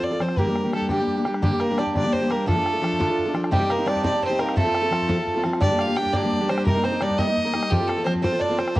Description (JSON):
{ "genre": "celtic folk, Celtic jig", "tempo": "115 BPM (dotted quarters)", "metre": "6/8", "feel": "straight", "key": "G minor", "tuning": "A4 = 442 Hz", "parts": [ { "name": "warm fiddle", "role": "melody", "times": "0.0-8.8 s", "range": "G4 to G5", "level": "-25 LUFS", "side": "equal", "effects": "cassette tape" }, { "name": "picked steel-string acoustic guitar", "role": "accompaniment", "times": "0.0-8.8 s", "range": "G2 to Bb4", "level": "-23 LUFS", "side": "equal", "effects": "cassette tape" }, { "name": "bodhran", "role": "percussion", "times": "0.0-8.8 s", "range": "none", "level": "-26 LUFS", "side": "equal", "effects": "none" }, { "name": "Irish bouzouki", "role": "second line", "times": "1.4-8.8 s", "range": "G3 to G4", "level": "-30 LUFS", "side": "right 4 dB", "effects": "cassette tape, analog delay" } ], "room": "light reverb, small room ambience", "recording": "home recording on cassette", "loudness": "-20 LUFS", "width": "side -17 dB against mid", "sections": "0.0-1.4 A section; 1.4-8.8 A section", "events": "none", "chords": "0.4 Gm; 2.5 Dm; 3.5 Cm; 4.6 F; 5.6 Gm; 6.7 Cm7; 7.7 F" }